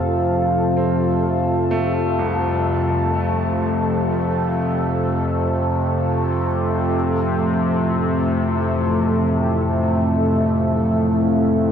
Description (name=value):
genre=dark ambient drone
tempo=free time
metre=none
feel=none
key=F major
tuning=A4 = 441 Hz
part: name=dark analog pad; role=sustained chords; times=0.0-11.7 s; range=A3 to A5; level=-22 LUFS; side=equal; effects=chorus
part: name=analog drone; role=drone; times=0.0-11.7 s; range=F2 to C3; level=-20 LUFS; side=equal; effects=chorus
part: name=bubbling stepped-filter texture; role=texture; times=0.0-11.7 s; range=A3 to A4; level=-26 LUFS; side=left 2 dB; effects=chorus, built-in reverb
part: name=clear baby grand piano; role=arpeggios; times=0.8-11.7 s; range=C2 to C4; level=-31 LUFS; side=right 2 dB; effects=diffuse ambient delay
room=wet huge ambient reverb, RT60 7.5 s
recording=none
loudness=-17 LUFS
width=side -8 dB against mid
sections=0.0-11.7 A section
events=none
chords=0.0 F; 6.9 A5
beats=free time